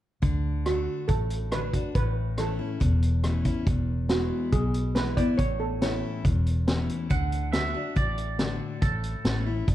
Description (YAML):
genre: honky-tonk and classic country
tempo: 140 BPM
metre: 4/4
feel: straight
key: D major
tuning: A4 = 440 Hz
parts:
  - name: picked steel-string acoustic guitar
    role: accompaniment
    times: 0.2-9.7 s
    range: E2 to F#4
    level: -30 LUFS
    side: left 4 dB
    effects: none
  - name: vintage muted fingered electric bass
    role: bass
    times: 0.2-9.7 s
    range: E1 to D2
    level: -28 LUFS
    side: equal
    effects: none
  - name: vintage drum kit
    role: drums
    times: 0.2-9.7 s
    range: hi-hat, kick drum, rim click, snare drum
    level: -28 LUFS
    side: equal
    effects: none
  - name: steel pan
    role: melody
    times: 0.7-6.9 s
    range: F#4 to D5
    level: -31 LUFS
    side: right 4 dB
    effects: none
  - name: twangy electric guitar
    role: second line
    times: 7.1-9.6 s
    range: A4 to F#5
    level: -33 LUFS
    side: right 4 dB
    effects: tape echo
room: light reverb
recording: dark, warm production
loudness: -24 LUFS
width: side -13 dB against mid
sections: 0.2-7.1 A section; 7.1-9.7 B section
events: clean electric guitar solo 7.1-9.7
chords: 0.2 D; 2.0 A; 3.7 E; 5.4 A; 7.1 D; 8.8 A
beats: | 0.23 0.66 1.09 1.52 | 1.95 2.38 2.81 3.24 | 3.67 4.10 4.53 4.96 | 5.39 5.82 6.25 6.68 | 7.11 7.54 7.97 8.40 | 8.82 9.26 9.68